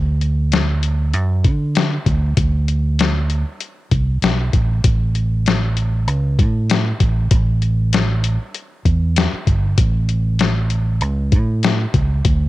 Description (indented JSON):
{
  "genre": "straight-eighth soul blues",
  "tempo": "97 BPM",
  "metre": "4/4",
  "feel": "swing 54% on 16ths",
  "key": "unclear",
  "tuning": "A4 = 440 Hz",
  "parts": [
    { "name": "fingered electric bass", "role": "bass", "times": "0.0-12.5 s", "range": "G1 to D3", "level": "-17 LUFS", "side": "right 1 dB", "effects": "none" },
    { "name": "lo-fi sampler-style drum kit", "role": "drums", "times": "0.2-12.4 s", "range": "hi-hat, kick drum, snare drum", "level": "-18 LUFS", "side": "left 2 dB", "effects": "overdrive" }
  ],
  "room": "light reverb, digital ambience",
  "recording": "1960s-style stereo",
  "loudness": "-15 LUFS",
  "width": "side -16 dB against mid",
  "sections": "0.0-12.5 A section",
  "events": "none",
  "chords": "none"
}